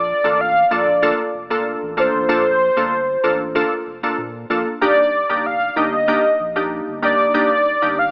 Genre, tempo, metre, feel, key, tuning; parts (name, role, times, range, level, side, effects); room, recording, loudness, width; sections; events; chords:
afrobeats; 95 BPM; 4/4; straight; Bb major; A4 = 440 Hz
warm velvety synth lead; melody; 0.0-8.1 s; C5 to F5; -19 LUFS; equal; chorus
warm sub bass; bass; 0.0-8.1 s; Eb1 to Bb2; -41 LUFS; equal
glassy digital keys; accompaniment; 0.2-8.0 s; Bb3 to A4; -22 LUFS; equal; chorus
light reverb, digital ambience; AM radio sound; -18 LUFS; mono
0.0-8.1 A section
0.0 Bbmaj7; 4.8 Ebmaj7